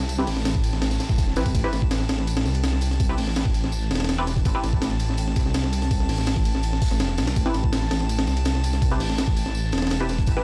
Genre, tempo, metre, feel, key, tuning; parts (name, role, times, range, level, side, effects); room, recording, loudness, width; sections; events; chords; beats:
drum and bass, jungle; 165 BPM; 4/4; straight; A minor; A4 = 439 Hz
dark detuned saw bass; bass; 0.0-10.4 s; E1 to C2; -27 LUFS; equal
breakbeat sampler-style drum kit; drums; 0.0-10.4 s; hi-hat, kick drum, ride cymbal, snare drum; -26 LUFS; equal
drifting glass-harmonics texture; texture; 0.0-10.4 s; A5; -39 LUFS; equal; chorus, built-in reverb
crunchy breakbeat drum kit; drums; 0.1-10.4 s; hi-hat, snare drum, tambourine; -40 LUFS; equal; high-pass filter on hats, high-pass filter on snare, high-pass filter on perc, high-pass filter on room
filtered dub chord stab; stabs; 0.2-4.6, 7.5-10.4 s; C4 to B4; -32 LUFS; equal; phaser, dub echo
small room ambience; dry, gritty hardware recording, transformer saturation, cassette tape; -23 LUFS; mono
0.0-10.4 A section
0.0 Am
| 0.09 0.46 0.82 1.18 | 1.55 1.91 2.27 2.64 | 3.00 3.36 3.73 4.09 | 4.46 4.82 5.18 5.55 | 5.91 6.27 6.64 7.00 | 7.36 7.73 8.09 8.46 | 8.82 9.18 9.55 9.91 | 10.27